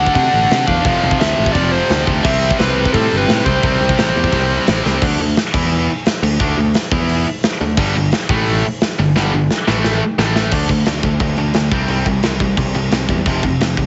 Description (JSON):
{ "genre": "punk rock", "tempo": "174 BPM", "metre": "4/4", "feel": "straight", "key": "unclear", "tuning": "A4 = 440 Hz", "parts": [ { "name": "overdriven electric guitar", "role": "melody", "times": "0.0-4.8 s", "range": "A4 to F#5", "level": "-20 LUFS", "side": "equal", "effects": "none" }, { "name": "tight distorted guitar", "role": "riff", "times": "0.0-13.9 s", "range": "F2 to E4", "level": "-21 LUFS", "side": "equal", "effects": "distortion" }, { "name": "tight distorted guitar", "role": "riff", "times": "0.0-5.0, 7.8-10.5 s", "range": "F2 to D4", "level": "-24 LUFS", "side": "equal", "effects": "distortion" }, { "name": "picked electric bass", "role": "bass", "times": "0.0-13.9 s", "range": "F1 to C3", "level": "-22 LUFS", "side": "equal", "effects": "none" }, { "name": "big rock drum kit", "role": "drums", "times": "0.1-13.9 s", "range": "crash cymbal, hi-hat, kick drum, snare drum", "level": "-21 LUFS", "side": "equal", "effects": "none" } ], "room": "little or no reverb", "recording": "heavily compressed radio sound, nothing above 7.9 kHz", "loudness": "-16 LUFS", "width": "mono", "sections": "0.0-5.0 A section; 5.0-10.5 B section; 10.5-13.9 C section", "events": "drum fill 4.8, 9.2-10.5", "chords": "0.0 D; 0.9 F5; 2.2 C5; 5.0 D5; 5.5 E5; 6.2 D5; 6.9 E5; 7.6 D5; 7.8 G5; 8.3 A5; 9.0 G5; 9.7 A5; 10.5 D5; 11.7 C5; 13.3 F5" }